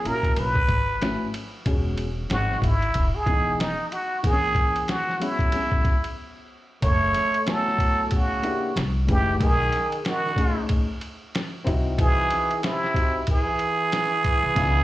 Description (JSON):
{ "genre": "hip hop, jazz-hop", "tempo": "93 BPM", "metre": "4/4", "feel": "swing 59% on 16ths", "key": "unclear", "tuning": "A4 = 440 Hz", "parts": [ { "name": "trumpet with plunger mute", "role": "melody", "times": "0.0-14.8 s", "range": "D#4 to C#5", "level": "-24 LUFS", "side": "right 1 dB", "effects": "slapback echo" }, { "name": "dark concert grand piano", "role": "accompaniment", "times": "0.0-14.8 s", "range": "E3 to G#5", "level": "-30 LUFS", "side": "left 2 dB", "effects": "slapback echo" }, { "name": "upright bass", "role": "bass", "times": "0.0-14.8 s", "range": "E1 to C#2", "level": "-25 LUFS", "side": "equal", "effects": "none" }, { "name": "lo-fi sampler-style drum kit", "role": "drums", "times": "0.1-14.7 s", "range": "hi-hat, kick drum, ride cymbal, snare drum", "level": "-26 LUFS", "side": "equal", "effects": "none" }, { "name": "trombone with plunger mute", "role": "second line", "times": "6.8-14.8 s", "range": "B#2 to A3", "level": "-31 LUFS", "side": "right 2 dB", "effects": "slapback echo" } ], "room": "small room ambience", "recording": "live gig heard through the venue's PA, club reverb", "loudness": "-21 LUFS", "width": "side -15 dB against mid", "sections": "0.0-6.8 A section; 6.8-14.8 B section", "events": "break 6.2-6.8", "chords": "0.4 B9sus4; 1.7 E69; 2.3 G#7; 3.0 Emaj9; 4.2 F#7; 5.5 E69; 6.8 F#m11; 8.8 C; 9.4 B13; 11.7 G#7b13/B#", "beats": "0.37 1.02 | 1.66 2.31 2.95 3.60 | 4.24 4.89 5.53 6.18 | 6.82 7.47 8.11 8.76 | 9.40 10.05 10.69 11.34 | 11.98 12.63 13.27 13.92 | 14.56" }